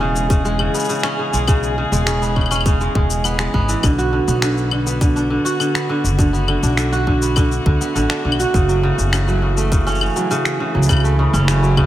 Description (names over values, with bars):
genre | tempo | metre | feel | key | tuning
folktronica | 102 BPM | 4/4 | straight | E mixolydian | A4 = 439 Hz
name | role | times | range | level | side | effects
dark string quartet | sustained chords | 0.0-11.9 s | D3 to G#4 | -26 LUFS | left 1 dB | none
kora | arpeggios | 0.0-11.9 s | C#3 to F#4 | -20 LUFS | right 1 dB | tape echo
upright bass | bass | 0.0-11.9 s | E1 to D2 | -19 LUFS | equal | none
electronic shaker, claves and finger snaps | drums | 0.2-11.9 s | none | -24 LUFS | left 3 dB | none
electronic kick drum | drums | 0.3-11.9 s | none | -16 LUFS | equal | none
room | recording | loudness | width
light reverb, small room ambience | none | -15 LUFS | side -13 dB against mid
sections
0.0-11.9 A section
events
none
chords
0.0 E6; 3.8 Bm; 8.5 F#m7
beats
0.31 0.90 | 1.48 2.07 2.66 3.25 | 3.84 4.42 5.01 5.60 | 6.19 6.78 7.37 7.95 | 8.54 9.13 9.72 10.31 | 10.90 11.48